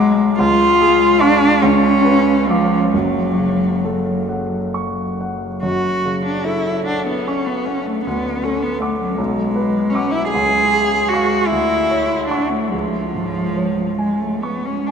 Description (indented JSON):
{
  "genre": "classical, romantic duo for cello and grand piano",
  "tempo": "43-55 BPM (dotted quarters)",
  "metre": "6/8",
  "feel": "rubato",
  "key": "F# minor",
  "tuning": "A4 = 440 Hz",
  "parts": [
    { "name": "warm cello", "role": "melody", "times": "0.0-14.9 s", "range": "E#3 to G#4", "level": "-16 LUFS", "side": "left 1 dB", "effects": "none" },
    { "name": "warm grand piano", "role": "accompaniment", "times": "0.0-14.9 s", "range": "F#1 to D6", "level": "-20 LUFS", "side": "right 2 dB", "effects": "none" }
  ],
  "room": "wet cathedral reverb, RT60 4.9 s",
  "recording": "in a vast, echoing space",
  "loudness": "-15 LUFS",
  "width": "side -6 dB against mid",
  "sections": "0.0-5.6 A section; 5.6-14.9 B section",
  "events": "none",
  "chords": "0.4 C#; 1.6 C#7b9; 2.9 F#m; 8.1 D; 9.2 G#m7b5/B; 10.3 C#; 11.5 Dmaj7; 12.7 C#"
}